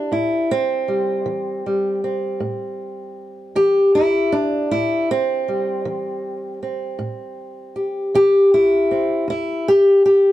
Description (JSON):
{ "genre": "acoustic country blues, solo or duo", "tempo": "52 BPM (dotted quarters)", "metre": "12/8", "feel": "straight", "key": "unclear", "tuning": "A4 = 441 Hz", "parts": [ { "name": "fingerpicked old ladder-braced acoustic guitar", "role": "solo", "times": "0.0-10.3 s", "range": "E2 to G4", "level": "-17 LUFS", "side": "equal", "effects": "none" } ], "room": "moderate studio reverb, RT60 0.6 s", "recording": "dark, warm production", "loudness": "-16 LUFS", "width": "side -14 dB against mid", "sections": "0.0-10.3 A section", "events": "steel-string acoustic guitar solo 0.0-10.3", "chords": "0.1 Am7; 9.3 Em" }